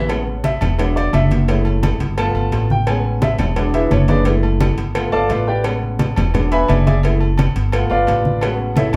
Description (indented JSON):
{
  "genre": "latin, salsa",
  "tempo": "173 BPM",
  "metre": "4/4",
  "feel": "straight",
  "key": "A major",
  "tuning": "A4 = 440 Hz",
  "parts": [
    { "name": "bright upright piano", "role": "accompaniment", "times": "0.0-9.0 s", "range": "F#3 to B5", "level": "-22 LUFS", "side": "equal", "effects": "none" },
    { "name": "upright bass", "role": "bass", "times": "0.0-9.0 s", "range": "E1 to A1", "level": "-20 LUFS", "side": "equal", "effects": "none" },
    { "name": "agogo bells and timbales", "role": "percussion", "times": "0.1-9.0 s", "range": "none", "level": "-32 LUFS", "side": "equal", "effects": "none" },
    { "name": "claves", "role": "percussion", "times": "0.1-9.0 s", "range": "none", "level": "-42 LUFS", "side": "equal", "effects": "none" },
    { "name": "congas", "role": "percussion", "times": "0.1-9.0 s", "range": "none", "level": "-23 LUFS", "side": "equal", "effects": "none" },
    { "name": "cowbell", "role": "percussion", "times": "0.1-9.0 s", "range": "none", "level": "-30 LUFS", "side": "equal", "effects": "none" }
  ],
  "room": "wet studio reverb, RT60 0.7 s",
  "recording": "heard from further back in the room",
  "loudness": "-17 LUFS",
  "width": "mono",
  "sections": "0.1-9.0 A section",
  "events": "upright piano solo 0.1-9.0",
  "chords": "0.1 Amaj7; 0.8 E7; 1.5 F#m7; 2.2 G9; 2.9 Amaj7; 3.6 E7; 4.3 F#m7; 5.0 G9; 5.6 Amaj7; 6.3 E7; 7.0 F#m7; 7.7 G9; 8.4 Amaj7",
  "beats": "| 0.09 0.44 0.79 1.14 | 1.48 1.83 2.18 2.52 | 2.87 3.22 3.57 3.91 | 4.26 4.61 4.96 5.30 | 5.65 6.00 6.34 6.69 | 7.04 7.38 7.73 8.07 | 8.42 8.77"
}